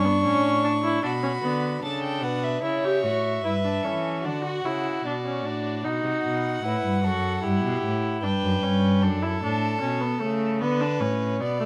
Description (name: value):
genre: classical, baroque-style fugue for string quartet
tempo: 75 BPM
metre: 4/4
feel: straight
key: unclear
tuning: A4 = 440 Hz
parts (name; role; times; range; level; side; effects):
- warm violin; melody; 0.0-9.0 s; D5 to C#6; -32 LUFS; equal; none
- warm violin; second line; 0.0-11.7 s; D4 to D5; -31 LUFS; equal; none
- rich viola; accompaniment; 0.0-11.7 s; A3 to G4; -30 LUFS; equal; none
- rich cello; bass; 0.0-11.7 s; F#2 to E3; -30 LUFS; equal; none
room: moderate studio reverb, RT60 1.0 s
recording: none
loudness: -25 LUFS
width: mono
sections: 0.0-2.6 A section; 2.6-11.7 B section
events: none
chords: 0.0 Bm; 2.6 A7; 4.2 D; 5.8 B7; 7.4 Em/G; 9.0 D/F#; 10.6 Bm